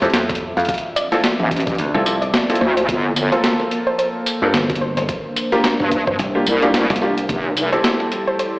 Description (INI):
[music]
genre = glitch hop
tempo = 109 BPM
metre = 4/4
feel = swing 58% on 16ths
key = G dorian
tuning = A4 = 440 Hz
[part]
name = woody wave-folded pluck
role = melody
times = 0.0-8.5 s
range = Bb4 to F5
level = -24 LUFS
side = equal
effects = wide subtle chorus, dub echo
[part]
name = dark analog pad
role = sustained chords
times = 0.0-8.6 s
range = F3 to E5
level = -26 LUFS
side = equal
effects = chorus, sidechain pumping
[part]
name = warm grand piano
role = stabs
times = 0.0-8.6 s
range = Bb3 to A4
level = -21 LUFS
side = equal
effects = vintage 12-bit sampler grit, sidechain pumping, dub echo
[part]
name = dry thumbed slap bass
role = bass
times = 0.0-7.3 s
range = G1 to G2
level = -21 LUFS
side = equal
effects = none
[part]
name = boom bap sampler-style drum kit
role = drums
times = 0.0-8.5 s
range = hi-hat, snare drum, tambourine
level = -21 LUFS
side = equal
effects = overdrive
[part]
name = electronic kick drum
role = drums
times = 0.3-7.4 s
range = none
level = -26 LUFS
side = equal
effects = overdrive
[part]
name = wobble bass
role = bass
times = 1.4-7.7 s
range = F1 to G2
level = -18 LUFS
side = equal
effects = chorus, overdrive
[sound]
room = light reverb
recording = played on a big sound system in a bare room, stone room reverb, AM radio sound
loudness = -16 LUFS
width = side -23 dB against mid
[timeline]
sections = 0.0-8.6 A section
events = none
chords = 0.0 Fmaj9; 0.7 Dm9; 2.9 Gm11; 5.1 C9sus4; 7.3 Fmaj9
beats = 0.14 | 0.69 1.24 1.79 2.34 | 2.89 3.44 3.99 4.54 | 5.09 5.64 6.19 6.74 | 7.29 7.84 8.39